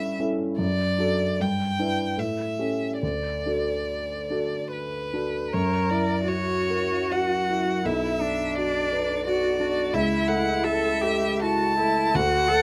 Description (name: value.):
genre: classical, slow romantic movement for piano trio.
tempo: 68-90 BPM.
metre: 3/4.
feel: rubato.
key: unclear.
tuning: A4 = 440 Hz.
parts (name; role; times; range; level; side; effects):
rich violin; melody; 0.0-12.6 s; B4 to A5; -29 LUFS; equal; none.
clear grand piano; accompaniment; 0.0-12.6 s; B1 to B4; -28 LUFS; equal; none.
rich cello; second line; 5.5-12.6 s; D4 to A#4; -30 LUFS; equal; none.
room: light reverb.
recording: close, detailed microphones.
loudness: -25 LUFS.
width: mono.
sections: 0.0-5.5 A section; 5.5-12.6 B section.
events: none.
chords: 0.0 A7/G; 0.6 D/F#; 1.4 Em7/G; 2.2 A7; 3.0 D; 5.5 F#7; 7.9 Bm; 9.9 A/C#.